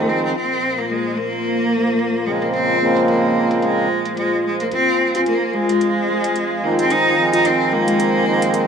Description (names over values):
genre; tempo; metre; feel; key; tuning
organic downtempo; 110 BPM; 4/4; swing 58% on 16ths; F minor pentatonic; A4 = 439 Hz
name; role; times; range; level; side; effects
bright cello; melody; 0.0-8.7 s; Ab3 to Eb4; -19 LUFS; equal; digital delay
hand-pumped harmonium; accompaniment; 0.0-8.7 s; Db3 to Eb4; -20 LUFS; right 2 dB; ping-pong delay
warm analog pad; sustained chords; 0.0-8.7 s; Bb3 to Ab5; -22 LUFS; left 1 dB; chorus
electronic hi-hat; drums; 0.2-8.7 s; none; -35 LUFS; right 1 dB; overdrive, low-pass filter on hats
kalimba; arpeggios; 4.7-8.7 s; F3 to F4; -22 LUFS; equal; ping-pong delay
room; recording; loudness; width
moderate lush hall reverb, RT60 2.0 s; rough home demo mix; -16 LUFS; side -7 dB against mid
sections
0.0-8.7 A section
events
none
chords
0.4 Bbm7; 4.7 Fm7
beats
| 0.36 0.90 1.45 1.99 | 2.54 3.08 3.63 4.17 | 4.72 5.26 5.81 6.36 | 6.90 7.45 7.99 8.54